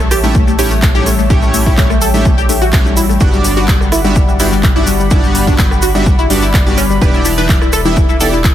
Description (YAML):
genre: progressive house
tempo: 126 BPM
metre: 4/4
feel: straight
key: unclear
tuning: A4 = 440 Hz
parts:
  - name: warm analog pad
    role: sustained chords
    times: 0.0-8.5 s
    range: G3 to B5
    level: -20 LUFS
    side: left 4 dB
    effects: chorus, sidechain pumping
  - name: tight sequenced synth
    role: arpeggios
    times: 0.0-8.5 s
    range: G3 to B4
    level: -17 LUFS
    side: left 2 dB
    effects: chorus, phaser, sidechain pumping, tape echo
  - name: round analog bass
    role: bass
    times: 0.0-8.5 s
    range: E1 to A1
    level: -17 LUFS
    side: equal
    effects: sidechain pumping
  - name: electronic rim click and congas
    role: percussion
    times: 0.0-8.3 s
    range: none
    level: -24 LUFS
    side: right 2 dB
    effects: sidechain pumping on perc, small room reverb, soft clipping on snare, sidechain pumping on snare
  - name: pop drum kit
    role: drums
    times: 0.1-8.5 s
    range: handclaps, hi-hat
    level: -21 LUFS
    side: equal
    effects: small room reverb
  - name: tube shaker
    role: percussion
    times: 0.1-8.5 s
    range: none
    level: -26 LUFS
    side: left 3 dB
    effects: none
  - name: chorused polysynth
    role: stabs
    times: 0.2-8.3 s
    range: G2 to E5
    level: -18 LUFS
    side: right 2 dB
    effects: sidechain pumping, tape echo
  - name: electronic kick drum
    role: drums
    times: 0.3-8.5 s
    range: none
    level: -12 LUFS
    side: equal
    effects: small room reverb
room: light reverb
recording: dense, heavily limited modern master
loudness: -9 LUFS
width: side -11 dB against mid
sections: 0.0-8.5 A section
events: none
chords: 0.0 A7; 3.2 Gmaj7; 7.0 Em7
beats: 0.35 0.82 | 1.30 1.78 2.25 2.73 | 3.21 3.68 4.16 4.63 | 5.11 5.59 6.06 6.54 | 7.01 7.49 7.97 8.44